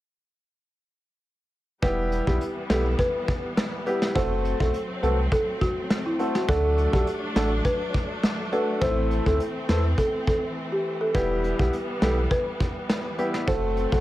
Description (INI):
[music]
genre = dancehall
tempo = 103 BPM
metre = 4/4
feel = straight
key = E minor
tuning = A4 = 439 Hz
[part]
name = folk marimba with medium mallets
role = melody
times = 1.8-14.0 s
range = E4 to C5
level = -28 LUFS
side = equal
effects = tape echo
[part]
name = clear grand piano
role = accompaniment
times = 1.8-14.0 s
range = G3 to A4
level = -27 LUFS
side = equal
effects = none
[part]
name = clear studio string section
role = sustained chords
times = 1.8-14.0 s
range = E3 to D4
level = -33 LUFS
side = equal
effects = sidechain pumping
[part]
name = warm sub bass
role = bass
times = 1.8-14.0 s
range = E1 to E2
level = -26 LUFS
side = equal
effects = none
[part]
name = vintage brush drum kit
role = drums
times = 1.8-14.0 s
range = hi-hat, kick drum, rim click, snare drum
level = -26 LUFS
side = equal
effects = none
[sound]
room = light reverb, studio reverb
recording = none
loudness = -22 LUFS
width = side -15 dB against mid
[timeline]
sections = 1.8-14.0 A section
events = break 10.6-11.1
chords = 1.8 Em; 4.2 F#dim; 6.5 D; 8.8 Am; 11.1 Em; 13.5 F#dim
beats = | 1.83 2.41 2.99 3.57 | 4.16 4.74 5.32 5.90 | 6.49 7.07 7.65 8.23 | 8.82 9.40 9.98 10.56 | 11.15 11.73 12.31 12.89 | 13.48